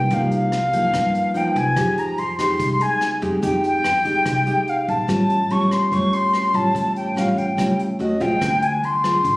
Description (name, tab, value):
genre	bossa nova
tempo	144 BPM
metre	4/4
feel	straight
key	unclear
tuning	A4 = 440 Hz
part	silver concert flute	melody	0.0-9.4 s	D#5 to C#6	-20 LUFS	left 1 dB	plate reverb
part	nylon-string guitar	accompaniment	0.0-9.4 s	G2 to G4	-22 LUFS	equal	none
part	upright bass	bass	0.0-9.4 s	A1 to Ab2	-27 LUFS	equal	none
part	vintage brush drum kit	drums	0.1-9.3 s	hi-hat, kick drum, rim click	-32 LUFS	equal	none
room	moderate studio ambience, RT60 0.5 s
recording	recorded on a phone in the room, studio reverb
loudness	-17 LUFS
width	side -21 dB against mid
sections	0.0-9.4 A section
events	none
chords	0.0 Cm7; 1.8 Fm9; 5.1 A7alt; 8.0 D#m7b5; 8.4 Dm7b5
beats	| 0.11 0.52 0.94 1.35 | 1.77 2.18 2.60 3.01 | 3.43 3.84 4.26 4.67 | 5.09 5.50 5.92 6.33 | 6.75 7.17 7.58 8.00 | 8.41 8.83 9.24